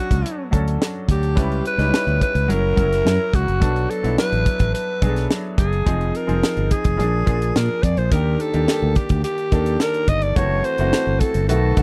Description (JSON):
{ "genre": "polished 1980s jazz-funk pop", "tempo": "107 BPM", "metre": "4/4", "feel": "straight", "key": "unclear", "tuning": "A4 = 440 Hz", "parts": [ { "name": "breathy alto saxophone", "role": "melody", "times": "0.0-11.8 s", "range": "F#4 to Eb5", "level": "-25 LUFS", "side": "equal", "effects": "none" }, { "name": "clear baby grand piano", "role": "accompaniment", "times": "0.0-11.8 s", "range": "Eb3 to B4", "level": "-27 LUFS", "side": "equal", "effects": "subtle chorus" }, { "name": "fretless electric bass", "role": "bass", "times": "0.1-11.8 s", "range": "F1 to Bb2", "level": "-23 LUFS", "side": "equal", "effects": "none" }, { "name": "tight funk drum kit", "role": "drums", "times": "0.1-11.8 s", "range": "hi-hat, kick drum, snare drum", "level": "-22 LUFS", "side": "equal", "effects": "none" } ], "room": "little or no reverb", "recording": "dry, close 1970s-style studio recording", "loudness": "-20 LUFS", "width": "mono", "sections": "0.0-11.8 A section", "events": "none", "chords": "0.0 Dmaj7; 1.4 C#m7b5; 2.5 F#7; 3.6 Bm7; 5.9 Fm7; 7.0 Bb7; 8.1 Ebmaj7; 10.4 F#m7b5" }